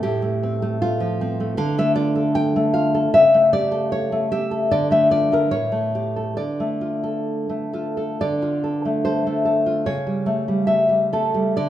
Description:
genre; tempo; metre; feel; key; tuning
romantic piece for solo classical guitar; 60-79 BPM; 2/4; rubato; D minor; A4 = 440 Hz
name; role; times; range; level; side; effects
nylon-string guitar; solo; 0.0-11.7 s; A2 to G5; -18 LUFS; left 1 dB; none
room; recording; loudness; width
moderate recital hall reverb, RT60 1.4 s; minimal, uncompressed stereo recording; -18 LUFS; side -12 dB against mid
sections
0.0-8.2 A section; 8.2-11.7 B section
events
none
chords
0.0 F/A; 1.6 Dm; 3.1 A7/C#; 4.7 Dm; 5.5 A7; 6.4 Dm; 9.9 A7/C#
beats
| 0.02 0.80 | 1.57 2.34 | 3.12 3.91 | 4.71 5.53 | 6.38 7.26 | 8.21 9.07 | 9.88 10.70 | 11.57

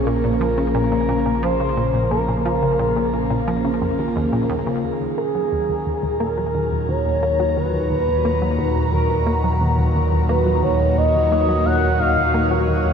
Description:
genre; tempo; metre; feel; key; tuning
ambient, sequencer-driven space music; 88 BPM; 4/4; straight; Bb minor, Eb minor from 4.8 s; A4 = 440 Hz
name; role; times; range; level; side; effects
expressive synth lead; melody; 0.0-12.7 s; Ab4 to Gb5; -22 LUFS; equal; wide subtle chorus, shimmer reverb, ping-pong delay
phased analog pad; sustained chords; 0.0-12.9 s; Bb2 to Bb5; -22 LUFS; equal; phaser, chorus, shimmer reverb
round analog bass; bass; 0.0-12.9 s; Bb1 to Eb2; -24 LUFS; equal; none
analog pluck; riff; 0.1-12.9 s; Eb2 to Bb3; -25 LUFS; left 1 dB; chorus, vintage 12-bit sampler grit, shimmer reverb, ping-pong delay
room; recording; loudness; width
wet huge ambient reverb, RT60 7.7 s; cassette tape; -17 LUFS; side -7 dB against mid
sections
0.0-4.8 A section; 4.8-12.9 B section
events
none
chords
0.0 Bbm; 4.8 Ebm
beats
0.07 0.75 1.43 | 2.11 2.79 3.48 4.16 | 4.84 5.52 6.20 6.89 | 7.57 8.25 8.93 9.61 | 10.29 10.98 11.66 12.34

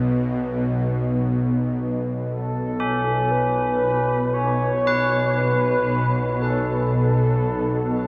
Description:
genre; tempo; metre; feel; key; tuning
dark ambient drone; 58 BPM; 4/4; straight; unclear; A4 = 440 Hz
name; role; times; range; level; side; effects
tubular bells; arpeggios; 0.0-8.1 s; C#4 to B4; -27 LUFS; equal; diffuse ambient delay
bowed-like drone; drone; 0.0-8.1 s; B1 to B2; -24 LUFS; equal; built-in reverb
mellow horn-like synth lead; melody; 2.3-8.1 s; A4 to C#5; -26 LUFS; equal; chorus, diffuse ambient delay
room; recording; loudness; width
wet huge ambient reverb, RT60 7.9 s; in a vast, echoing space; -22 LUFS; mono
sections
0.0-8.1 A section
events
none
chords
0.0 Aadd9/B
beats
0.22 1.25 | 2.29 3.32 4.35 5.39 | 6.42 7.46

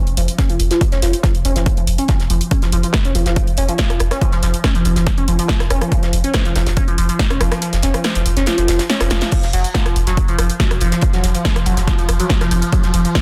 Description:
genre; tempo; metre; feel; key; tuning
driving peak-time techno; 141 BPM; 4/4; straight; unclear; A4 = 435 Hz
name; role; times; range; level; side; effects
saturated sub bass; bass; 0.1-13.0 s; F1; -21 LUFS; equal; sidechain pumping, low-pass filter
techno drum kit; drums; 0.1-13.2 s; crash cymbal, hi-hat, rim click, snare drum; -25 LUFS; equal; overdrive, sidechain pumping on hats, sidechain pumping on cymbals
overdriven synth lead; riff; 0.2-13.1 s; F3 to Db4; -23 LUFS; equal; phaser, sidechain pumping, delay
damped 70s drum kit; drums; 0.2-13.2 s; hi-hat, snare drum; -33 LUFS; equal; none
electronic kick drum; drums; 0.4-13.2 s; none; -20 LUFS; equal; none
swarming drone; drone; 10.6-13.2 s; F3; -29 LUFS; equal; built-in reverb, sidechain pumping
room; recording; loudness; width
light reverb; dense, heavily limited modern master; -16 LUFS; mono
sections
0.0-9.3 A section; 9.3-13.2 B section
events
filter sweep on analog synth lead 0.0-9.3; kick drops out 7.6-9.3; drum fill 9.1; drop 9.3-13.2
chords
0.0 Db/F; 9.3 N.C.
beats
0.39 | 0.81 1.24 1.66 2.09 | 2.51 2.94 3.36 3.79 | 4.21 4.64 5.07 5.49 | 5.92 6.34 6.77 7.19 | 7.62 8.04 8.47 8.90 | 9.32 9.75 10.17 10.60 | 11.02 11.45 11.88 12.30 | 12.73 13.15

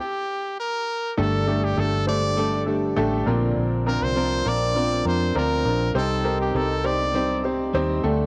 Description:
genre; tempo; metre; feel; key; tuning
piano-driven pop; 101 BPM; 4/4; straight; G minor; A4 = 440 Hz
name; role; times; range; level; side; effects
brilliant trumpet; melody; 0.0-7.4 s; G4 to D5; -29 LUFS; equal; analog delay
warm upright piano; accompaniment; 1.2-8.3 s; G2 to C5; -27 LUFS; equal; cassette tape
direct-recorded clean electric guitar; riff; 1.2-8.3 s; G2 to Bb4; -30 LUFS; equal; cassette tape
vintage muted fingered electric bass; bass; 1.2-8.3 s; G1 to F2; -29 LUFS; equal; none
room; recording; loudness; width
light reverb, small room ambience; home recording on cassette; -23 LUFS; mono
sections
0.0-1.2 A section; 1.2-8.3 B section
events
stop 0.0-1.2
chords
0.0 N.C.; 1.2 Gsus2; 3.3 Bbadd9; 6.0 Cm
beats
0.58 | 1.18 1.78 2.37 2.97 | 3.57 4.16 4.76 5.36 | 5.95 6.55 7.14 7.74

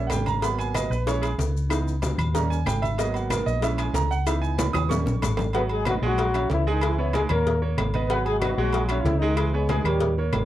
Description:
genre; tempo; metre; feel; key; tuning
latin, salsa; 188 BPM; 4/4; straight; G# minor; A4 = 445 Hz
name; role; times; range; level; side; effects
clear upright piano; accompaniment; 0.0-10.4 s; E3 to D#6; -28 LUFS; right 6 dB; none
hollow-body short-scale fingered electric bass; bass; 0.0-10.4 s; G#1 to D#2; -25 LUFS; left 1 dB; none
claves; percussion; 0.1-10.4 s; none; -36 LUFS; left 19 dB; none
congas; percussion; 0.1-10.4 s; none; -32 LUFS; left 1 dB; none
cowbell and bongos; percussion; 0.1-10.4 s; none; -32 LUFS; left 6 dB; none
maracas; percussion; 0.1-5.6 s; none; -41 LUFS; left 19 dB; none
timbales and agogo bells; percussion; 0.1-10.4 s; none; -33 LUFS; right 2 dB; none
clear trombone section; melody; 5.6-10.2 s; D#3 to B4; -26 LUFS; left 2 dB; none
room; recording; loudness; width
light reverb; dry, close 1970s-style studio recording; -22 LUFS; side -13 dB against mid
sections
0.0-5.5 A section; 5.5-10.4 B section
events
upright piano solo 0.0-5.5; drum fill 4.6-5.5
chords
0.4 G#m7; 1.1 A#m7b5; 1.7 C#m7; 2.4 D#7; 3.0 G#m7; 3.6 A#m7b5; 4.3 C#m7; 4.9 D#7; 5.5 G#m7; 6.2 A#m7b5; 6.8 C#m7; 7.5 D#5; 8.1 G#m7; 8.7 A#m7b5; 9.4 C#m7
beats
0.11 | 0.43 0.75 1.07 1.39 | 1.71 2.03 2.35 2.67 | 2.99 3.31 3.63 3.95 | 4.27 4.59 4.91 5.23 | 5.55 5.87 6.18 6.50 | 6.82 7.14 7.46 7.78 | 8.10 8.42 8.73 9.05 | 9.37 9.69 10.01 10.33

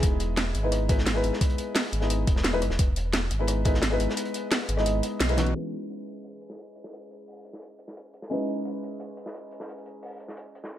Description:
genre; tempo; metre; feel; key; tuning
liquid drum and bass; 174 BPM; 4/4; straight; unclear; A4 = 440 Hz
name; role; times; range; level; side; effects
felt-muted upright piano; accompaniment; 0.0-10.8 s; E3 to D#5; -30 LUFS; left 1 dB; digital delay
sub bass with octave; bass; 0.0-5.5 s; E1 to B1; -27 LUFS; equal; none
crunchy breakbeat drum kit; drums; 0.0-10.7 s; hi-hat, snare drum; -38 LUFS; equal; high-pass filter on hats, low-pass filter on hats, high-pass filter on snare, low-pass filter on snare, high-pass filter on room, low-pass filter on room
drum and bass drum kit; drums; 0.0-9.6 s; hi-hat, rim click, snare drum; -29 LUFS; equal; none
electronic kick drum; drums; 0.0-3.7 s; none; -24 LUFS; equal; none
room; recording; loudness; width
light reverb; low-pass filter; -24 LUFS; side -12 dB against mid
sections
0.0-5.5 A section; 5.5-10.8 B section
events
drop 0.0-5.5; kick drops out 4.2-5.5; band accent 5.2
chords
0.0 Emaj7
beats
| 0.03 0.38 0.72 1.07 | 1.41 1.76 2.10 2.45 | 2.79 3.14 3.48 3.83 | 4.17 4.51 4.86 5.21 | 5.55 5.89 6.24 6.58 | 6.93 7.27 7.62 7.96 | 8.31 8.65 9.00 9.34 | 9.69 10.03 10.38 10.72

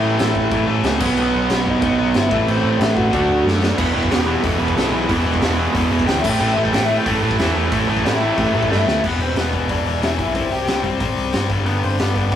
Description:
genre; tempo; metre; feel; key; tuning
punk rock; 183 BPM; 4/4; straight; E minor; A4 = 440 Hz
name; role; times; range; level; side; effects
lead guitar through a small cranked amp; melody; 0.0-12.4 s; B3 to A5; -23 LUFS; left 2 dB; overdrive
crunchy overdriven guitar; riff; 0.0-9.0 s; E2 to D4; -20 LUFS; right 5 dB; none
tight distorted guitar; riff; 0.0-12.4 s; E2 to D4; -22 LUFS; left 6 dB; distortion
overdriven picked electric bass; bass; 0.0-12.4 s; E1 to G2; -24 LUFS; equal; none
raw garage drum kit; drums; 0.2-12.4 s; crash cymbal, hi-hat, kick drum, snare drum; -23 LUFS; equal; none
room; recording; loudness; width
moderate stone room reverb, RT60 1.4 s; rough rehearsal-room recording, tube saturation; -16 LUFS; side -10 dB against mid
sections
0.0-3.8 A section; 3.8-9.0 B section; 9.0-12.4 C section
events
drum fill 3.5-3.8, 8.7-9.0; lead electric guitar solo 3.8-9.0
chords
0.0 A; 1.0 B; 2.3 Am; 3.1 D; 3.8 E5; 6.2 A5; 9.0 E5; 10.4 C; 11.5 G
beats
0.19 0.52 0.84 | 1.17 1.50 1.82 2.15 | 2.48 2.80 3.13 3.46 | 3.78 4.11 4.43 4.76 | 5.09 5.42 5.75 6.07 | 6.40 6.73 7.06 7.39 | 7.72 8.05 8.38 8.70 | 9.03 9.36 9.69 10.02 | 10.35 10.68 11.01 11.34 | 11.67 12.00 12.33

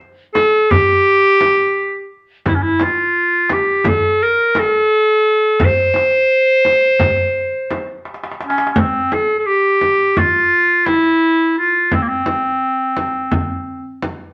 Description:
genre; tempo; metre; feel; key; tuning
Turkish makam ensemble; 171 BPM (eighths); 9/8; straight; C makam hicaz; A4 = 440 Hz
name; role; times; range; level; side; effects
darbuka; percussion; 0.0-8.8 s; none; -26 LUFS; equal; none
bright clarinet; melody; 0.3-14.0 s; Bb3 to C5; -15 LUFS; equal; none
frame drum; percussion; 0.4-14.2 s; none; -23 LUFS; equal; none
room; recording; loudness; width
wet studio reverb, RT60 0.9 s; none; -15 LUFS; mono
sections
0.0-8.8 A section; 8.8-14.3 B section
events
drum fill 8.1-8.8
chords
none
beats
0.00 0.35 0.70 1.05 1.40 1.75 2.10 | 2.45 2.80 3.15 3.50 3.85 4.20 4.55 4.90 5.25 | 5.60 5.95 6.30 6.65 7.00 7.36 7.71 8.06 8.41 | 8.76 9.11 9.46 9.81 10.16 10.51 10.86 11.21 11.56 | 11.92 12.27 12.62 12.97 13.32 13.67 14.02

